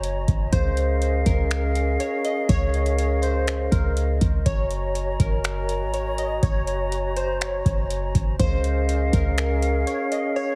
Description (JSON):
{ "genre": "hip hop, atmospheric cloud-rap", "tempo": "122 BPM", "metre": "4/4", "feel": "half-time", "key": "Gb lydian", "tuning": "A4 = 440 Hz", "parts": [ { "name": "mellow hollow small flute group", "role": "sustained chords", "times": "0.0-10.6 s", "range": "Db4 to Bb5", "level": "-30 LUFS", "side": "equal", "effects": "sidechain pumping" }, { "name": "clean 808-style bass", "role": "bass", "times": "0.0-9.8 s", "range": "Gb1 to Db2", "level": "-26 LUFS", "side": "equal", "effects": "none" }, { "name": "booming analog drum machine", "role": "drums", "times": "0.0-10.2 s", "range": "finger snaps, hi-hat, kick drum", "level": "-27 LUFS", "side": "equal", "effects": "vintage 12-bit sampler grit" }, { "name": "glassy wavetable pluck", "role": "melody", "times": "0.5-10.6 s", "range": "Bb4 to Eb5", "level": "-31 LUFS", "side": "equal", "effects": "chorus, low-pass filter, tape echo" } ], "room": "digital ambience", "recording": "heavily compressed radio sound", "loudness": "-23 LUFS", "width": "mono", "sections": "0.0-10.6 A section", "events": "none", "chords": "0.0 Gb6; 0.5 Db6; 4.5 Gb6; 8.4 Db6" }